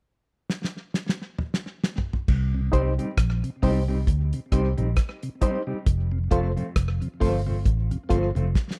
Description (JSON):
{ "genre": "roots reggae", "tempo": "67 BPM", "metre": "4/4", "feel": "swing 57% on 16ths", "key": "C dorian", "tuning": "A4 = 440 Hz", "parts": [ { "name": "cloth-damped thuddy drum kit", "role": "drums", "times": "0.5-8.8 s", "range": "crash cymbal, hi-hat, kick drum, rim click, snare drum, toms", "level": "-26 LUFS", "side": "equal", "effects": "none" }, { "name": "vintage muted fingered electric bass", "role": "bass", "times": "2.3-8.5 s", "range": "F1 to D2", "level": "-27 LUFS", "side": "equal", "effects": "none" }, { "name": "mellow tonewheel organ", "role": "accompaniment", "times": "2.5-8.4 s", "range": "F2 to F4", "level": "-34 LUFS", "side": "equal", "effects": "slow rotary speaker, slapback echo" }, { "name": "mellow electric guitar", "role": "accompaniment", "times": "2.7-8.5 s", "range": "F3 to G4", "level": "-34 LUFS", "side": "equal", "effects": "tape echo" }, { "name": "reed electric piano", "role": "stabs", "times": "2.7-8.3 s", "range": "Eb4 to C5", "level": "-30 LUFS", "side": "equal", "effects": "fast tremolo" } ], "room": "little or no reverb", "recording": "dry, close 1970s-style studio recording", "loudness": "-25 LUFS", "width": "mono", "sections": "0.0-2.3 A section; 2.3-8.8 B section", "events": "drum fill 0.5-2.3, 8.5", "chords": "0.0 N.C.; 2.3 Cm; 5.9 F", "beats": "0.49 1.39 | 2.28 3.18 4.07 4.97 | 5.86 6.76 7.65 8.55" }